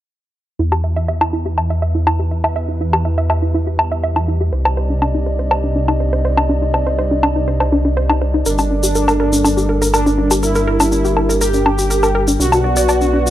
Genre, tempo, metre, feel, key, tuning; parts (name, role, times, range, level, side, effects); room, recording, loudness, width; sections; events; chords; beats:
melodic techno; 122 BPM; 4/4; straight; E minor; A4 = 440 Hz
dark analog pad; sustained chords; 0.6-13.3 s; G3 to Eb5; -22 LUFS; right 1 dB; chorus
warbly dusty pluck; arpeggios; 0.6-13.3 s; D4 to E5; -20 LUFS; equal; chorus, analog delay
dark detuned saw bass; bass; 0.6-13.3 s; G1 to E2; -18 LUFS; equal
woodblock; drums; 0.7-13.0 s; -19 LUFS; left 1 dB; low-pass filter on perc
analog synth brass; melody; 8.5-13.3 s; D4 to G4; -19 LUFS; right 1 dB; chorus, analog delay
egg shaker; percussion; 8.5-13.3 s; -23 LUFS; left 2 dB
light reverb; dry, gritty hardware recording; -14 LUFS; side -13 dB against mid
0.6-13.3 A section
filter sweep on synth arpeggio sound 0.6-13.3
0.6 Em; 4.5 Cmadd9; 8.5 Gmadd9; 12.4 Bm
| 0.59 1.08 1.58 2.07 | 2.56 3.05 3.54 4.04 | 4.53 5.02 5.51 6.00 | 6.50 6.99 7.48 7.97 | 8.46 8.95 9.45 9.94 | 10.43 10.92 11.41 11.90 | 12.40 12.89